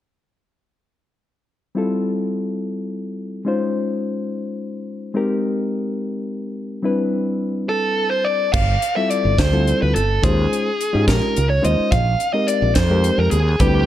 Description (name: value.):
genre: electric jazz fusion.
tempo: 71 BPM (dotted quarters).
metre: 6/8.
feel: straight.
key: unclear.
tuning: A4 = 439 Hz.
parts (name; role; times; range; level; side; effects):
barky reed electric piano; accompaniment; 1.7-13.9 s; G3 to C5; -22 LUFS; left 2 dB; overdrive, spring reverb.
bluesy overdriven lead guitar; melody; 7.7-13.9 s; G4 to F5; -20 LUFS; equal; distortion.
fretless electric bass; bass; 8.5-13.8 s; G1 to Ab2; -18 LUFS; right 1 dB; none.
crisp fusion drum kit; drums; 8.5-13.7 s; crash cymbal, hi-hat, kick drum, snare drum; -22 LUFS; equal; none.
room: light reverb, small room ambience.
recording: dark, warm production.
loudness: -17 LUFS.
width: side -12 dB against mid.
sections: 1.8-8.5 A section; 8.5-13.9 B section.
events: none.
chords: 1.8 G13sus4; 3.5 Eb13sus4; 5.2 Bb13sus4; 6.8 D13sus4; 8.5 G13sus4; 10.2 Eb13sus4; 11.9 Bb13sus4.